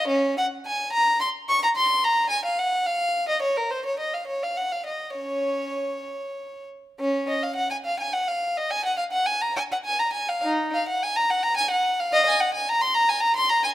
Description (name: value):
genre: classical, baroque-style suite movement for unaccompanied violin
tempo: 96-112 BPM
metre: 3/4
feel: rubato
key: Db major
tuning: A4 = 438 Hz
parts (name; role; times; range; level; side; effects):
- rich violin; solo; 0.0-13.7 s; Db4 to Db6; -22 LUFS; equal; none
room: moderate recital hall reverb, RT60 1.3 s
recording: close, detailed microphones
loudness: -22 LUFS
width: side -14 dB against mid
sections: 0.0-7.0 A section; 7.0-13.7 B section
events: none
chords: none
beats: | 0.10 0.67 1.21 | 1.76 2.31 2.86 | 3.42 3.98 4.56 | 5.17 5.79 6.39 | 7.00 7.58 8.14 | 8.72 9.29 9.87 | 10.46 11.04 11.60 | 12.15 12.70 13.24